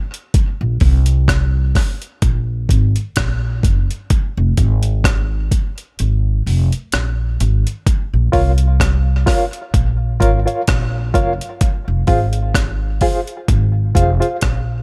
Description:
dub reggae; 64 BPM; 4/4; swing 55% on 16ths; Bb minor; A4 = 440 Hz
breakbeat sampler-style drum kit; drums; 0.1-14.7 s; hi-hat, kick drum, rim click; -19 LUFS; equal
upright bass; bass; 0.6-14.8 s; F1 to C2; -18 LUFS; equal
reed electric piano; stabs; 8.3-14.4 s; F4 to F5; -23 LUFS; equal; fast tremolo, tape echo
digital ambience; -17 LUFS; mono
0.0-14.8 A section
break 0.0-0.3; kick muted 6.0-7.9
0.3 N.C.; 7.9 Bbm; 11.6 Fm
| 0.34 1.28 2.23 3.17 | 4.11 5.04 5.99 6.92 | 7.86 8.80 9.74 10.68 | 11.62 12.55 13.49 14.43

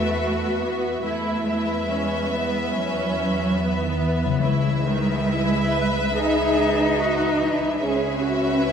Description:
cinematic, emotional film score for orchestra; 71 BPM; 4/4; rubato; C# minor; A4 = 440 Hz
rich studio violin section; melody; 0.0-8.7 s; E5; -31 LUFS; left 2 dB
rich studio violin section; second line; 0.0-8.7 s; B4 to E5; -27 LUFS; left 2 dB
rich symphonic viola section; accompaniment; 0.0-8.7 s; D#3 to B4; -27 LUFS; right 2 dB
concert harp; arpeggios; 0.0-8.3 s; C#3 to C#5; -28 LUFS; left 6 dB
rich studio double bass section; bass; 0.0-8.7 s; C#2 to E2; -30 LUFS; right 3 dB
warm studio cello section; bass; 0.0-8.7 s; D#3 to D#4; -24 LUFS; equal
wet scoring stage reverb, RT60 1.9 s; minimal, uncompressed stereo recording; -20 LUFS; side -7 dB against mid
0.0-8.7 A section
0.0 Esus2; 4.4 C#m7
0.21 | 1.05 1.89 2.75 3.59 | 4.43 5.27 6.15 6.98 | 7.82 8.65

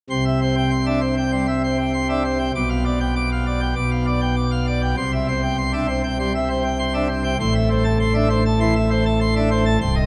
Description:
classical, organ toccata; 99 BPM; 4/4; straight; C major; A4 = 440 Hz
pipe organ, plenum; solo; 0.1-10.1 s; C1 to D6; -20 LUFS; equal
wet cathedral reverb, RT60 5.5 s; in a vast, echoing space; -20 LUFS; mono
0.1-10.1 A section
0.1 C; 2.5 G7/B; 5.0 C; 7.4 Am
| 0.10 0.72 1.33 1.94 | 2.55 3.16 3.77 4.38 | 4.98 5.59 6.19 6.79 | 7.40 8.00 8.60 9.21 | 9.81

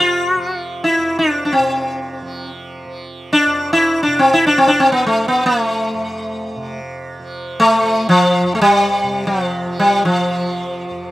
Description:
indian classical, Hindustani; free time; F raga yaman; A4 = 440 Hz
sitar; melody; 0.0-11.1 s; F3 to F4; -14 LUFS; equal
tanpura; drone; 0.0-11.1 s; F2 to F3; -29 LUFS; right 2 dB
light reverb; rough home demo mix; -13 LUFS; side -16 dB against mid
0.0-11.1 A section
free time

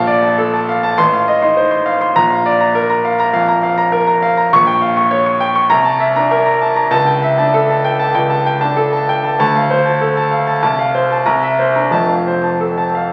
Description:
classical, virtuoso piano study; 99 BPM; 4/4; rubato; F major; A4 = 439 Hz
clear concert grand piano; solo; 0.0-13.1 s; F1 to Db6; -14 LUFS; equal
wet recital hall reverb, RT60 1.6 s; very old 78 rpm record, vinyl crackle; -14 LUFS; mono
0.0-13.1 A section
0.0 Bbmaj7; 1.0 F7/A; 2.1 Bb; 4.5 Gm7b5/Bb; 5.7 C13; 6.9 A7/C#; 9.4 Dm7; 10.6 F/C; 11.3 C7; 11.9 F
0.37 0.97 1.56 | 2.15 2.74 3.34 3.93 | 4.53 5.12 5.72 6.32 | 6.94 7.55 8.16 8.78 | 9.39 10.00 10.61 11.25 | 11.92 12.61

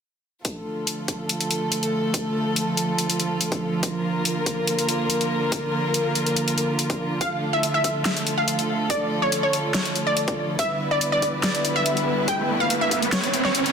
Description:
heavy wobble dubstep; 142 BPM; 4/4; half-time; D harmonic minor; A4 = 440 Hz
warm chamber string section; sustained chords; 0.4-13.7 s; D3 to B4; -24 LUFS; right 1 dB; sidechain pumping
dubstep drum kit; drums; 0.4-13.7 s; hi-hat, snare drum; -25 LUFS; left 1 dB; small room ambience
electronic kick drum; drums; 0.4-13.0 s; -30 LUFS; equal; high-pass filter on kick, small room ambience
wide unison pluck; melody; 7.2-13.7 s; C#5 to G5; -24 LUFS; equal; dub echo
riser; sound effects; 11.3-13.7 s; -27 LUFS; right 3 dB
moderate lush hall reverb, RT60 2.0 s; dense, heavily limited modern master; -21 LUFS; side -6 dB against mid
0.4-13.7 A section
riser 11.3-13.7; kick drops out 13.1-13.7
0.4 Dm; 3.8 Bb; 7.2 Dm; 10.6 Em7
| 0.45 0.87 1.29 1.72 | 2.14 2.56 2.98 3.41 | 3.83 4.25 4.67 5.10 | 5.52 5.94 6.36 6.79 | 7.21 7.63 8.05 8.48 | 8.90 9.32 9.74 10.17 | 10.59 11.01 11.44 11.86 | 12.28 12.70 13.12 13.55

